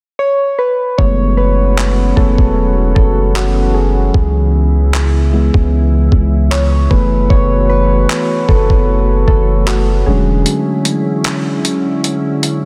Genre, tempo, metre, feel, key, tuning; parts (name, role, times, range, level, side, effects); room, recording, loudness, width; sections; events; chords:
contemporary R&B; 76 BPM; 4/4; swing 54% on 16ths; F# minor; A4 = 441 Hz
soft electric-piano-like synth keys; accompaniment; 0.2-12.7 s; D3 to C#5; -18 LUFS; equal; chorus
glassy FM pad; sustained chords; 1.4-12.7 s; C#3 to F#4; -23 LUFS; equal; ensemble chorus, built-in reverb
long sustained 808-style bass; bass; 1.0-10.4 s; E1 to C#2; -16 LUFS; equal
dusty soul sampler-style drum kit; drums; 1.0-12.6 s; handclaps, hi-hat, kick drum; -17 LUFS; equal
digital ambience; dense, heavily limited modern master; -13 LUFS; mono
1.0-12.7 A section
synth keys solo 1.0-12.7; break 10.5-12.7
0.0 N.C.; 1.0 F#m11; 4.1 C#m7; 6.9 F#m11; 10.1 E13